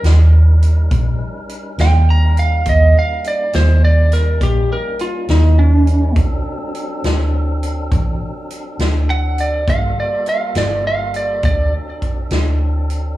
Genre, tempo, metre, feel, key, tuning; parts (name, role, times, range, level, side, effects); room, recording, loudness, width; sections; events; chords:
slow blues; 68 BPM (dotted quarters); 12/8; straight; A4 = 445 Hz
lightly driven lead guitar; melody; 0.0-11.7 s; Db4 to Bb5; -19 LUFS; right 2 dB; plate reverb, slapback echo, analog delay
tonewheel organ; sustained chords; 0.0-13.2 s; F#3 to Bb4; -28 LUFS; left 1 dB; slow rotary speaker, plate reverb
vintage muted fingered electric bass; bass; 0.0-13.2 s; G1 to Eb2; -13 LUFS; equal
swinging big-band drum kit; drums; 0.0-13.0 s; hi-hat, kick drum, snare drum; -20 LUFS; equal
little or no reverb; live gig heard through the venue's PA, club reverb; -13 LUFS; side -16 dB against mid
0.0-13.2 A section
lead electric guitar solo 0.0-13.2
0.0 Eb7; 6.2 D7; 9.7 Gm9; 11.4 D7